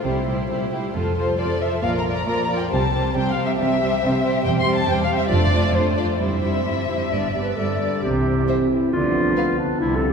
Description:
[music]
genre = quick classical-period movement for symphony orchestra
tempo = 136 BPM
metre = 4/4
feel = rubato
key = C major from 4.5 s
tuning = A4 = 440 Hz
[part]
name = dark chamber violin section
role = melody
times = 0.0-9.5 s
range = C5 to C6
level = -26 LUFS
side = left 3 dB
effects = none
[part]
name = warm chamber violin section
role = second line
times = 0.0-9.4 s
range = D4 to D5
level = -26 LUFS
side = left 2 dB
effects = none
[part]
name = warm studio viola section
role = accompaniment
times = 0.0-9.4 s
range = F3 to F4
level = -26 LUFS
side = right 2 dB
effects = none
[part]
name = dark chamber double bass section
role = bass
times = 0.0-10.1 s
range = E1 to D2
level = -27 LUFS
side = right 1 dB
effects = none
[part]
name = warm chamber cello section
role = bass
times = 0.0-10.1 s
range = E2 to D3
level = -26 LUFS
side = right 2 dB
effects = none
[part]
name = warm clarinet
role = second line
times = 7.3-10.1 s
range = D4 to B4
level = -23 LUFS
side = right 1 dB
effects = none
[part]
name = mellow French horn section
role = sustained chords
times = 8.0-10.1 s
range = E3 to C4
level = -24 LUFS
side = left 1 dB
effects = none
[sound]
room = wet cathedral reverb, RT60 5.1 s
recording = recorded in a church or concert hall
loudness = -18 LUFS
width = side -6 dB against mid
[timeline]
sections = 0.0-8.0 A section; 8.0-10.1 B section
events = none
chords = 0.0 C; 0.9 F; 1.8 Bb; 2.7 C; 4.5 C/E; 5.3 Dm7/F; 6.2 C/G; 7.1 G; 8.0 C; 8.9 Bdim/D

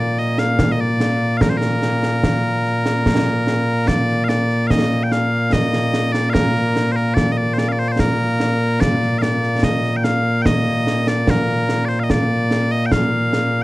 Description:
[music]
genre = scottish traditional, Scottish pipe music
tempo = 73 BPM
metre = 3/4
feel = straight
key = Bb major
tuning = A4 = 439 Hz
[part]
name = loud bright bagpipes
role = melody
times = 0.0-13.6 s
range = Bb2 to G5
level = -17 LUFS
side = equal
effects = none
[part]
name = concert snare drum and concert bass drum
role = drums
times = 0.2-13.5 s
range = none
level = -20 LUFS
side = right 1 dB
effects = none
[sound]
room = light reverb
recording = dry, close 1970s-style studio recording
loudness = -16 LUFS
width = side -18 dB against mid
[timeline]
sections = 0.0-3.9 A section; 3.9-13.6 B section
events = none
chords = none

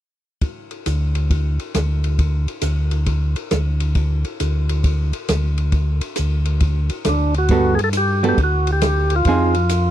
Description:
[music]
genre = soul jazz organ trio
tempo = 136 BPM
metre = 4/4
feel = swing 66% on 8ths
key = G major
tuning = A4 = 441 Hz
[part]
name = open jazz drum kit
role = drums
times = 0.4-9.8 s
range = hi-hat, kick drum, ride cymbal, rim click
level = -23 LUFS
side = equal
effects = none
[part]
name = mellow tonewheel organ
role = bass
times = 0.9-9.9 s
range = D2 to G2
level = -18 LUFS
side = equal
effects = overdrive, chorus vibrato, slow rotary speaker
[part]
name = percussive tonewheel organ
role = melody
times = 7.1-9.9 s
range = D4 to A4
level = -20 LUFS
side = equal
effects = slow rotary speaker
[part]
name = vintage hollow-body jazz guitar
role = accompaniment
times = 7.5-9.5 s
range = F3 to A4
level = -18 LUFS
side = right 5 dB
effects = none
[sound]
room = little or no reverb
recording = dry, close 1970s-style studio recording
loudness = -17 LUFS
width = side -12 dB against mid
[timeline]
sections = 0.4-7.5 A section; 7.5-9.9 B section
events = none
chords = 0.4 N.C.; 6.6 D; 7.5 Gmaj9; 9.3 Fm7

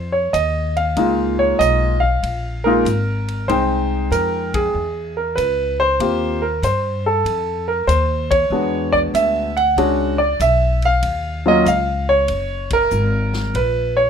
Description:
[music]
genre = jazz piano trio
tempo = 95 BPM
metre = 4/4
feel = swing 67% on 8ths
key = unclear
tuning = A4 = 440 Hz
[part]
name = warm grand piano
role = melody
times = 0.0-14.1 s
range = Gb3 to G5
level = -17 LUFS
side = right 1 dB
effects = none
[part]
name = upright bass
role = bass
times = 0.0-14.1 s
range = Gb1 to G2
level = -22 LUFS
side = left 1 dB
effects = none
[part]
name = vintage drum kit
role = drums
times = 0.3-13.7 s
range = hi-hat, kick drum, ride cymbal, snare drum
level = -32 LUFS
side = left 2 dB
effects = none
[sound]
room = light reverb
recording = minimal, uncompressed stereo recording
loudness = -16 LUFS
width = side -7 dB against mid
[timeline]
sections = 0.0-14.1 A section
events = band accent 4.4-4.8, 8.2-8.5, 12.6-12.9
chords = 0.0 Ab5 (rootless); 1.0 Db69; 3.5 Fm9; 4.8 Dbm; 6.0 Eb69; 8.5 E13; 11.0 Ebm9; 13.6 Bbm

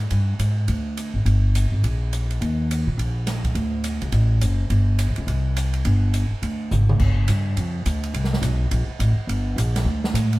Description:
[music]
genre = jazz piano trio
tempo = 209 BPM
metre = 4/4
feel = swing 61% on 8ths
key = G minor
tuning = A4 = 440 Hz
[part]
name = upright bass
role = bass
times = 0.0-10.4 s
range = F#1 to Bb2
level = -20 LUFS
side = equal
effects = none
[part]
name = swinging big-band drum kit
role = drums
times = 0.1-10.4 s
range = crash cymbal, hi-hat, kick drum, ride cymbal, snare drum, toms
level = -29 LUFS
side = right 2 dB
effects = none
[sound]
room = little or no reverb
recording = none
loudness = -19 LUFS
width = side -19 dB against mid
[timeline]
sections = 0.0-7.0 A section; 7.0-10.4 A section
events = drum fill 6.7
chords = none

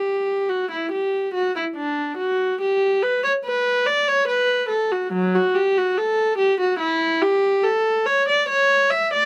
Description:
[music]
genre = classical, baroque-style suite movement for unaccompanied viola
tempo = 71 BPM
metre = 3/4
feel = rubato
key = unclear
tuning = A4 = 439 Hz
[part]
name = warm viola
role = solo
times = 0.0-9.3 s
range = F#3 to E5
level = -20 LUFS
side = equal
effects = none
[sound]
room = little or no reverb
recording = close, detailed microphones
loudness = -20 LUFS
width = mono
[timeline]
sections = 0.0-9.3 A section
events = none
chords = none

